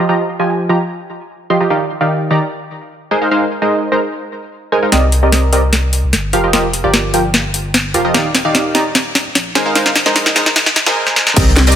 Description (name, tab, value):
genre	future bass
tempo	149 BPM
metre	4/4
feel	half-time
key	unclear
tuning	A4 = 440 Hz
part	supersaw stab	riff	0.0-11.8 s	Eb3 to C6	-15 LUFS	right 1 dB	sidechain pumping, low-pass filter, digital delay
part	saturated sub bass	bass	4.9-11.8 s	Eb1 to C2	-16 LUFS	equal	sidechain pumping
part	trap drum kit	drums	4.9-11.8 s	crash cymbal, hi-hat, snare drum	-14 LUFS	equal	overdrive
part	electronic kick drum	drums	11.4 s	none	-12 LUFS	equal	overdrive
room	light reverb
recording	high-pass filter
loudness	-12 LUFS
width	side -9 dB against mid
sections	0.0-4.9 A section; 4.9-11.4 B section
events	build-up 4.9-11.4; drum fill 4.9-11.0, 11.1-11.4; filter sweep on supersaw synth 4.9-11.4; filter sweep 4.9-11.4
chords	0.0 F7sus4; 1.7 Ebmaj7; 3.1 Ab69; 4.9 Cm9; 6.3 F7sus4; 8.1 Ebmaj7; 9.6 Ab69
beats	| 0.09 0.49 0.90 1.30 | 1.70 2.10 2.51 2.91 | 3.31 3.71 4.12 4.52 | 4.92 5.33 5.73 6.13 | 6.53 6.94 7.34 7.74 | 8.14 8.55 8.95 9.35 | 9.76 10.16 10.56 10.96 | 11.37